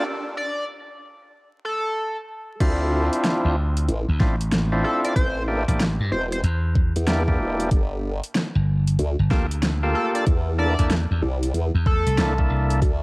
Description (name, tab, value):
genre	glitch hop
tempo	94 BPM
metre	4/4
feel	swing 64% on 16ths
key	D minor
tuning	A4 = 439 Hz
part	sync lead	melody	0.0-12.4 s	A4 to D5	-28 LUFS	equal	chorus, cassette tape, analog delay
part	overdriven tonewheel organ	stabs	0.0-12.8 s	Bb3 to A4	-26 LUFS	equal	vintage 12-bit sampler grit, sidechain pumping, analog delay
part	formant-sweep wobble bass	bass	0.0-13.0 s	E1 to E2	-23 LUFS	equal	chorus, high-pass filter
part	electronic kick drum	drums	2.6-13.0 s	none	-20 LUFS	equal	overdrive, cassette tape
part	pop drum kit	drums	2.6-13.0 s	crash cymbal, hi-hat, rim click, snare drum	-26 LUFS	equal	overdrive, cassette tape
part	slap bass	bass	3.4-12.8 s	G1 to G2	-21 LUFS	equal	none
room	light reverb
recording	home recording on cassette, vinyl crackle, high-pass filter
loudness	-20 LUFS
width	side -28 dB against mid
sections	0.0-2.6 A section; 2.6-13.0 B section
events	build-up 0.0-2.6; filter sweep 0.0-2.6; break 0.1-2.6; drop 2.6-13.0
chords	0.1 N.C.; 2.6 Dm9; 5.2 Em7b5; 7.7 Gm9; 10.3 C13